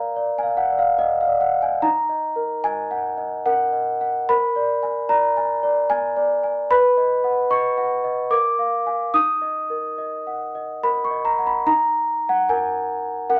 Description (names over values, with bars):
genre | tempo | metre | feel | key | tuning
classical, lullaby for celesta | 73 BPM | 3/4 | rubato | Eb minor | A4 = 441 Hz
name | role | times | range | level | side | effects
large celesta | solo | 0.0-13.4 s | Eb4 to Eb6 | -21 LUFS | equal | none
room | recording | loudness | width
wet club reverb, RT60 0.5 s | none | -21 LUFS | mono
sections
0.0-11.7 A section; 11.7-13.4 A section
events
none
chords
0.0 Bb; 1.8 Ebm; 4.3 Bb7b9; 6.7 B; 8.3 Bb7; 9.1 Ebm